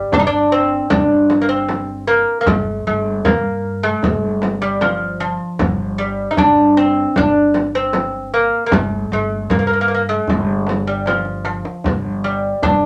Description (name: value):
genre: Persian modal ensemble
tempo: 77 BPM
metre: 4/4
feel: straight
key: G dastgah shur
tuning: A4 = 441 Hz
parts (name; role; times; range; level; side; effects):
- lute; melody; 0.0-12.9 s; F3 to Eb4; -18 LUFS; equal; none
- upright bass; bass; 0.1-12.9 s; G1 to G2; -25 LUFS; equal; none
- frame drum; percussion; 0.1-12.8 s; none; -22 LUFS; equal; none
- tombak; percussion; 0.1-12.9 s; none; -28 LUFS; equal; none
room: wet studio ambience, RT60 0.5 s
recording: none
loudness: -17 LUFS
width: mono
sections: 0.0-12.9 A section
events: drum fill 11.1-11.8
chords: none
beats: 0.13 0.91 1.69 | 2.47 3.25 4.03 4.81 | 5.59 6.37 7.15 7.93 | 8.72 9.50 10.28 11.06 | 11.85 12.63